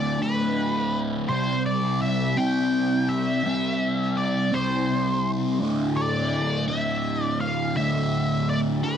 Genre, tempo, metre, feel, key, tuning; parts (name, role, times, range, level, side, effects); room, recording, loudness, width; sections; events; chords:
rock; 56 BPM (dotted quarters); 6/8; straight; A4 = 436 Hz
octave-fuzz lead guitar; melody; 0.0-9.0 s; B4 to G5; -27 LUFS; equal; wah, distortion, tape echo
thick fuzz guitar; riff; 0.0-9.0 s; D2 to C4; -23 LUFS; equal; distortion, phaser
digital ambience; dry, close 1970s-style studio recording; -22 LUFS; side -8 dB against mid
0.0-9.0 A section
0.0 D5; 1.3 C; 5.6 D5